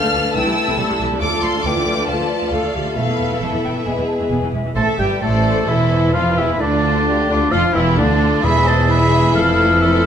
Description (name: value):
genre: classical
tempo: 133 BPM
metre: 4/4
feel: uneven beats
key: A minor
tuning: A4 = 438 Hz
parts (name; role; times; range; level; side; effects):
- warm symphonic violin section; melody; 0.0-10.1 s; F4 to F6; -24 LUFS; left 3 dB; none
- bright clarinet; second line; 0.0-10.1 s; D4 to B4; -27 LUFS; left 2 dB; none
- mellow concert flute; second line; 0.0-10.1 s; D5 to F6; -26 LUFS; left 2 dB; none
- warm studio violin section; second line; 0.0-10.1 s; F4 to A5; -26 LUFS; left 1 dB; none
- mellow bassoon; accompaniment; 0.0-10.1 s; D3 to A3; -25 LUFS; right 1 dB; none
- rich symphonic viola section; accompaniment; 0.0-10.1 s; C3 to A4; -25 LUFS; right 1 dB; none
- warm French horn section; sustained chords; 0.0-10.1 s; D3 to A4; -24 LUFS; left 3 dB; none
- rich symphonic cello section; bass; 0.0-10.1 s; C2 to A2; -23 LUFS; right 2 dB; none
- warm symphonic double bass section; bass; 0.1-10.1 s; E1 to D2; -22 LUFS; right 2 dB; none
- warm oboe; second line; 4.8-10.1 s; D5 to B5; -20 LUFS; right 1 dB; none
- timpani; percussion; 8.4-9.1 s; E2; -27 LUFS; left 1 dB; none
room: wet recital hall reverb, RT60 1.5 s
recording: none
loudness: -14 LUFS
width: side -8 dB against mid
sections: 0.0-4.8 A section; 4.8-10.1 B section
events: none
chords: 0.4 Am/C; 1.2 Dm; 3.0 Esus4; 3.9 E; 4.8 Am; 6.6 Dm; 8.4 E; 9.4 Fmaj7